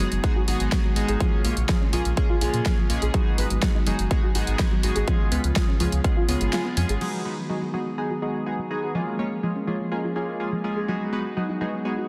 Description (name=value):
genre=progressive house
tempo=124 BPM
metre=4/4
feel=straight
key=G# dorian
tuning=A4 = 440 Hz
part: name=airy breathy pad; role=sustained chords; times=0.0-12.1 s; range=C#3 to G#4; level=-36 LUFS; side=equal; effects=chorus, sidechain pumping
part: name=soft round pluck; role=arpeggios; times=0.0-12.0 s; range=E#3 to G#4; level=-33 LUFS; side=equal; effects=ensemble chorus, sidechain pumping, tape echo
part: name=chorused polysynth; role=stabs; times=0.0-11.9 s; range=G#3 to C#5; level=-31 LUFS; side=equal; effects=sidechain pumping, tape echo
part: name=round analog bass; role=bass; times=0.0-7.0 s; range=F#1 to A#2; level=-27 LUFS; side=equal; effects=sidechain pumping
part: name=big-room dance drum kit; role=drums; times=0.1-7.1 s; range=crash cymbal, hi-hat, snare drum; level=-33 LUFS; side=equal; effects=overdrive, sidechain pumping on hats, sidechain pumping on cymbals
part: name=electronic kick drum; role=drums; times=0.2-6.1 s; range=none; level=-25 LUFS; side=equal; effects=overdrive
room=moderate lush hall reverb, RT60 1.9 s, digital ambience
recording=dense, heavily limited modern master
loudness=-24 LUFS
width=mono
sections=0.0-7.0 A section; 7.0-12.1 B section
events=kick drops out 6.5-7.0; filter sweep on synth pluck 7.0-12.1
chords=0.0 G#m7; 1.2 A#m7; 3.1 G#m7; 5.1 C#7; 7.0 G#m7; 8.9 A#m7; 10.9 G#m7